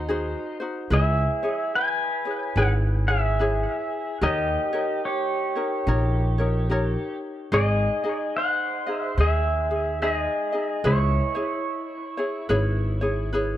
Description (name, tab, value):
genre	Hawaiian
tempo	72 BPM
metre	4/4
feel	swing 62% on 8ths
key	C# minor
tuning	A4 = 436 Hz
part	pedal steel guitar	melody	0.0-13.3 s	D#4 to G#5	-26 LUFS	equal	analog delay
part	ukulele	accompaniment	0.0-13.6 s	D#4 to D#5	-28 LUFS	left 1 dB	none
part	upright bass	bass	0.0-13.6 s	G#1 to D#2	-23 LUFS	equal	none
room	light reverb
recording	dark, warm production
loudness	-22 LUFS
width	side -12 dB against mid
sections	0.0-13.6 A section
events	none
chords	0.0 G#7; 0.9 C#m7; 4.2 D#7; 7.5 G#; 10.8 C#m7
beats	0.08 | 0.91 1.74 2.56 3.39 | 4.22 5.05 5.87 6.70 | 7.53 8.36 9.19 10.01 | 10.84 11.67 12.50 13.32